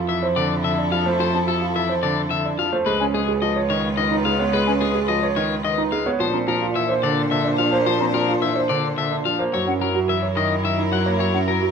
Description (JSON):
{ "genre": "classical, minimalist pattern music", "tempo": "108 BPM", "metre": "3/4", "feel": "straight", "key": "unclear", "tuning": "A4 = 441 Hz", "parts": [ { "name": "rich studio violin section", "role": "sustained chords", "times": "0.0-11.7 s", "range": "D4 to C5", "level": "-27 LUFS", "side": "left 3 dB", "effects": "none" }, { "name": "warm grand piano", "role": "arpeggios", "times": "0.0-11.7 s", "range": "C4 to C#5", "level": "-25 LUFS", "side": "right 6 dB", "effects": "none" }, { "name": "clear cello", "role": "bass", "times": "0.0-11.7 s", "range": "C#2 to Bb2", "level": "-25 LUFS", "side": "right 3 dB", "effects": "none" }, { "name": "electric guitar at the edge of break-up", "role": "melody", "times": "0.1-11.7 s", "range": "G#4 to F#5", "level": "-24 LUFS", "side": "left 11 dB", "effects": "none" }, { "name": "bright baby grand piano", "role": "accompaniment", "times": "0.1-11.7 s", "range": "D3 to B3", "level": "-26 LUFS", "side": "equal", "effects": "none" }, { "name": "silver concert flute", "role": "arpeggios", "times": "1.3-11.4 s", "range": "F#5 to Bb5", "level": "-29 LUFS", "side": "left 7 dB", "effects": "none" } ], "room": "moderate large studio reverb, RT60 1.2 s", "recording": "none", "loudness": "-18 LUFS", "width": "side -6 dB against mid", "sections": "0.0-11.7 A section", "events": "none", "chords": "0.0 Fmaj7; 2.9 C#7; 6.2 Bbadd9; 9.5 F#7" }